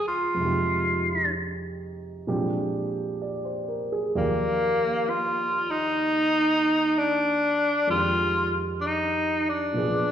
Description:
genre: jazz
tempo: 64 BPM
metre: 4/4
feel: swing 66% on 8ths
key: Eb major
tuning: A4 = 441 Hz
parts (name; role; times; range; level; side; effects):
- breathy tenor saxophone; melody; 0.0-10.1 s; Bb3 to F4; -23 LUFS; equal; none
- dark concert grand piano; accompaniment; 0.0-10.1 s; Db2 to D5; -29 LUFS; right 2 dB; none
room: wet recital hall reverb, RT60 1.4 s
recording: recorded in a church or concert hall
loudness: -22 LUFS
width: side -9 dB against mid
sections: 0.0-10.1 A section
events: none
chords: 0.4 Fm9; 2.3 Bb13; 4.1 Ebmaj9; 7.9 Fm7

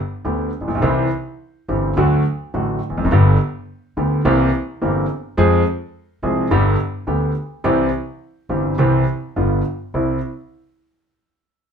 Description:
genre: tango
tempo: 106 BPM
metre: 4/4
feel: rubato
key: C major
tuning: A4 = 440 Hz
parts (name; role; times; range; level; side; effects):
- warm concert grand piano; accompaniment; 0.2-10.2 s; G1 to Ab4; -17 LUFS; equal; none
- upright bass; bass; 0.2-10.2 s; E1 to F2; -22 LUFS; equal; none
room: wet studio reverb, RT60 0.7 s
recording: band playing live in one room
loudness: -16 LUFS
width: side -7 dB against mid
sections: 0.0-9.9 A section; 9.9-11.7 B section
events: none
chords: 0.0 G; 0.8 C; 2.0 D; 3.1 G; 4.2 C7; 5.4 Fm; 6.5 G; 7.6 C; 9.4 G7; 9.9 C

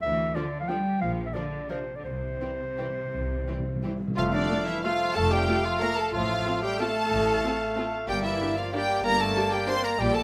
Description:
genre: classical, orchestral ballroom waltz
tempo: 154-202 BPM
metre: 3/4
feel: rubato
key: F major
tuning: A4 = 439 Hz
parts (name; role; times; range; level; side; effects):
- mellow clarinet; second line; 0.0-10.2 s; D4 to G5; -35 LUFS; equal; none
- bright studio double bass section; bass; 0.0-10.2 s; F1 to D2; -36 LUFS; equal; none
- rich studio cello section; bass; 0.0-10.2 s; F2 to G3; -37 LUFS; equal; none
- rich studio violin section; second line; 0.3-10.2 s; C4 to C5; -37 LUFS; equal; none
- rich studio violin section; melody; 0.4-10.2 s; G4 to C6; -33 LUFS; equal; none
- rich studio viola section; accompaniment; 0.4-9.8 s; E3 to G4; -37 LUFS; equal; none
- warm French horn section; sustained chords; 0.4-10.2 s; D3 to E4; -36 LUFS; equal; none
- timpani; percussion; 2.0-4.6 s; F2 to C3; -37 LUFS; equal; none
- clear cor anglais; second line; 4.2-10.2 s; D5 to F5; -37 LUFS; equal; none
- flute section; second line; 4.2-10.2 s; D5 to C6; -37 LUFS; equal; none
- clear bassoon; accompaniment; 4.2-10.2 s; G3 to Bb3; -36 LUFS; equal; none
room: moderate recital hall reverb, RT60 1.4 s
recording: none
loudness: -27 LUFS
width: mono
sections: 0.0-4.2 A section; 4.2-10.2 B section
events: timpani fill 2.0-4.2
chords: 0.0 Dm; 1.0 Bb; 2.0 C; 4.2 F; 6.1 F/A; 8.1 Gm

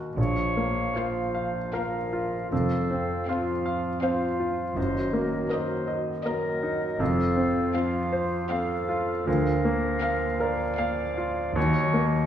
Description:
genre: classical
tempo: 79 BPM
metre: 3/4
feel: rubato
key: unclear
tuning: A4 = 440 Hz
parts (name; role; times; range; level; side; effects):
- clear grand piano; melody; 0.0-12.3 s; Bb1 to F5; -27 LUFS; left 1 dB; none
- mellow concert flute; second line; 0.2-12.3 s; Eb5 to F5; -35 LUFS; right 1 dB; none
- warm clarinet; second line; 0.2-12.1 s; F4 to D5; -31 LUFS; right 1 dB; none
- mellow bassoon; accompaniment; 0.2-12.3 s; F3 to Gb3; -36 LUFS; right 3 dB; none
- mellow French horn section; sustained chords; 0.2-11.8 s; Eb3 to Gb4; -35 LUFS; left 2 dB; none
- clear studio double bass section; bass; 0.2-12.2 s; F1 to Eb2; -34 LUFS; right 2 dB; none
- rich studio cello section; bass; 0.2-12.2 s; D2 to Bb2; -34 LUFS; right 1 dB; none
- rich studio violin section; melody; 1.0-11.4 s; none; barely audible; none; none
- warm studio violin section; second line; 1.0-11.4 s; Eb5 to F5; -39 LUFS; left 3 dB; none
- warm studio viola section; accompaniment; 1.0-11.4 s; Bb3 to C4; -36 LUFS; equal; none
room: wet recital hall reverb, RT60 1.5 s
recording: heard from further back in the room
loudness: -24 LUFS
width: side -10 dB against mid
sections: 0.2-12.3 A section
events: none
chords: 0.2 Bbm; 2.5 F; 4.8 Ebm/Gb; 7.0 F; 9.3 Bb/D; 11.6 Ebm

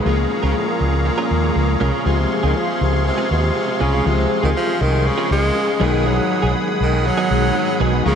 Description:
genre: pop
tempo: 120 BPM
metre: 4/4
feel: straight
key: Db major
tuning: A4 = 440 Hz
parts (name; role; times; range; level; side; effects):
- clear tenor saxophone; melody; 0.0-8.2 s; Bb2 to Ab3; -21 LUFS; right 1 dB; ping-pong delay
- crunchy overdriven guitar; accompaniment; 0.0-8.2 s; Ab2 to Db4; -29 LUFS; right 1 dB; lush chorus
- tine electric piano; accompaniment; 0.0-8.2 s; F3 to Ab4; -24 LUFS; left 4 dB; ensemble chorus
- musette accordion; sustained chords; 0.0-8.2 s; Ab4 to Eb6; -24 LUFS; equal; stereo widening
- direct-recorded clean electric guitar; riff; 0.0-8.2 s; Gb3 to Bb4; -26 LUFS; right 3 dB; none
- mellow fretless electric bass; bass; 0.1-8.2 s; Cb2 to Eb2; -19 LUFS; equal; lush chorus
room: wet huge ambient reverb, RT60 9.0 s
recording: dreamy mix soaked in reverb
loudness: -16 LUFS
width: side -7 dB against mid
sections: 0.0-8.2 A section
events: none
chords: 0.1 Bbm7/Db; 2.1 Dbmaj7; 5.8 Abm7/Cb

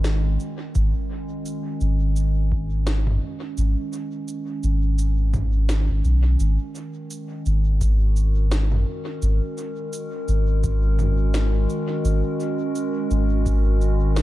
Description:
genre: ambient dub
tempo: 85 BPM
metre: 4/4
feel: swing 57% on 16ths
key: unclear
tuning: A4 = 439 Hz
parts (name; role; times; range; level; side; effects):
- warbly tape-like pad; sustained chords; 0.0-14.2 s; D#3 to A#4; -28 LUFS; right 1 dB; chorus, built-in reverb, vintage 12-bit sampler grit
- soft dub sub bass; bass; 0.0-14.2 s; G#1 to B1; -19 LUFS; equal; none
- organic electronic drum kit; drums; 0.0-14.2 s; cabasa, snare drum, toms; -32 LUFS; right 1 dB; overdrive, dub echo
- electronic kick drum; drums; 0.8-13.6 s; none; -27 LUFS; equal; none
room: little or no reverb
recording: dark, warm production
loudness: -20 LUFS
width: side -16 dB against mid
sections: 0.0-6.4 A section; 6.4-14.2 B section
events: none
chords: 0.0 G#7(no3)

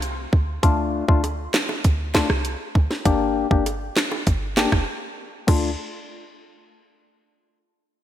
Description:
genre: dancehall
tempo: 99 BPM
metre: 4/4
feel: straight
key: D minor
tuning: A4 = 441 Hz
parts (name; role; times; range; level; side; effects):
- short 808-style bass; bass; 0.0-5.8 s; F1 to D2; -24 LUFS; right 1 dB; none
- island pop drum kit; drums; 0.0-5.6 s; crash cymbal, handclaps, hi-hat, kick drum, rim click, snare drum; -21 LUFS; right 1 dB; gated reverb
- percussive organ stab; accompaniment; 0.6-5.7 s; A3 to G4; -26 LUFS; left 5 dB; chorus, low-pass filter
- bongos; percussion; 1.2-5.8 s; none; -34 LUFS; right 3 dB; none
room: light reverb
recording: bright 1980s-style digital production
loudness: -19 LUFS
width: side -11 dB against mid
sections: 0.0-5.5 A section; 5.5-7.9 B section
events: filter sweep on synth stab 0.0-5.5; break 4.9-5.5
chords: 0.0 Dm; 3.1 Gm; 5.5 Dm

